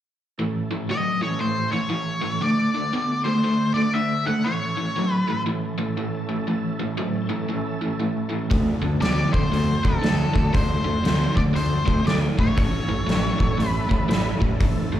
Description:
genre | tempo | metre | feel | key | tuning
blues rock power trio and southern rock | 118 BPM | 4/4 | swing 62% on 8ths | A major | A4 = 440 Hz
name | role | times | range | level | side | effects
overdriven tonewheel organ | sustained chords | 0.4-15.0 s | A3 to A4 | -35 LUFS | right 2 dB | slow rotary speaker, chorus vibrato
overdriven electric guitar | riff | 0.4-15.0 s | A2 to B3 | -24 LUFS | equal | tremolo, slapback echo
octave-fuzz lead guitar | melody | 0.9-5.4, 9.0-14.4 s | A4 to F#5 | -26 LUFS | left 2 dB | distortion, slapback echo
fuzz fingered electric bass | bass | 8.5-15.0 s | G#1 to D3 | -26 LUFS | equal | overdrive
oversized low-tuned drum kit | drums | 8.5-14.8 s | hi-hat, kick drum, snare drum | -22 LUFS | equal | none
room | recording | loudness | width
light reverb, studio reverb | live gig heard through the venue's PA, club reverb | -20 LUFS | side -11 dB against mid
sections
0.4-15.0 A section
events
none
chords
0.4 A; 2.4 D; 4.5 A; 8.5 D; 12.6 A

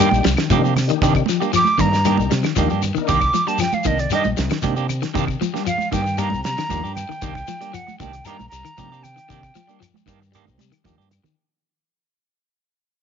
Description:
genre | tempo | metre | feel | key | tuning
afrobeat | 116 BPM | 4/4 | straight | C minor | A4 = 440 Hz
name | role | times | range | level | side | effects
breathy bright jazz flute | melody | 0.0-9.8 s | D5 to D6 | -22 LUFS | right 2 dB | none
electric guitar at the edge of break-up | arpeggios | 0.0-11.3 s | Eb3 to G3 | -24 LUFS | left 13 dB | tremolo
semi-hollow electric guitar | stabs | 0.0-11.3 s | Eb3 to G4 | -25 LUFS | right 12 dB | harmonic tremolo
shekere | percussion | 0.0-11.4 s | none | -29 LUFS | left 6 dB | none
tonewheel organ | accompaniment | 0.1-3.1 s | Bb3 to Bb4 | -28 LUFS | left 15 dB | slow rotary speaker, overdrive, chorus vibrato
fingered electric bass | bass | 0.1-11.2 s | Bb1 to C3 | -23 LUFS | equal | none
congas | percussion | 0.1-11.4 s | none | -28 LUFS | right 13 dB | none
damped 70s drum kit | drums | 0.2-11.2 s | hi-hat, kick drum, snare drum | -26 LUFS | right 3 dB | none
claves | percussion | 0.4-11.3 s | none | -33 LUFS | left 17 dB | none
room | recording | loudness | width
light reverb, small room ambience | 1960s-style stereo with parts hard left and right, nothing above 7.5 kHz | -17 LUFS | side -7 dB against mid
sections
0.0-11.4 A section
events
fade-out 0.0-11.4; flute solo 0.0-11.4; drum fill 10.6-11.4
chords
0.0 Cm9

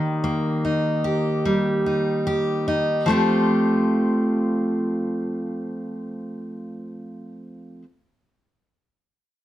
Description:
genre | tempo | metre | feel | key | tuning
pop | 74 BPM | 4/4 | swing 55% on 16ths | F mixolydian | A4 = 439 Hz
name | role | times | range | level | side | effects
picked steel-string acoustic guitar | accompaniment | 0.0-7.8 s | Eb3 to G4 | -21 LUFS | equal | none
room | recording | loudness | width
moderate studio reverb, RT60 0.7 s | none | -20 LUFS | side -13 dB against mid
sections
0.0-3.1 A section; 3.1-6.3 B section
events
none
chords
0.0 Eb; 3.1 Fadd9

